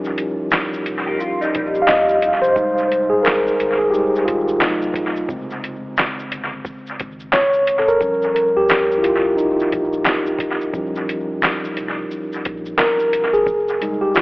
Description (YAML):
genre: lo-fi hip hop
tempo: 88 BPM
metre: 4/4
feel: swing 62% on 16ths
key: unclear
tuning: A4 = 440 Hz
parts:
  - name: mellow tine electric piano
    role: accompaniment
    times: 0.0-14.2 s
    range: Db3 to F5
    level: -17 LUFS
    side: equal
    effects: medium stereo tremolo, low-pass filter, dub echo
  - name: sub bass with octave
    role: bass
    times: 0.0-14.0 s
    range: D1 to Bb1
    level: -42 LUFS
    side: equal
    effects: none
  - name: lo-fi sampler-style drum kit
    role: drums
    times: 0.0-14.2 s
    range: handclaps, hi-hat, kick drum, shaker, snare drum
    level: -22 LUFS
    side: equal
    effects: dub echo
  - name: finger snap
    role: percussion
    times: 0.5-13.0 s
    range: none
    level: -30 LUFS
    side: left 1 dB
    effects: none
  - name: electric guitar through a small old amp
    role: second line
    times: 1.1-2.4 s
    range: G3 to G4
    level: -23 LUFS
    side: left 1 dB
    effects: analog chorus, low-pass filter, dub echo
room: moderate plate reverb, RT60 2.3 s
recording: echo-heavy mix, cassette tape, telephone sound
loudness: -16 LUFS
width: side -24 dB against mid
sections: 0.0-14.2 A section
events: tine electric piano solo 0.0-14.2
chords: 0.0 Eb9; 2.6 Fm7; 4.6 F7b9; 5.3 Dm7b5; 8.0 Eb9; 13.5 Fm7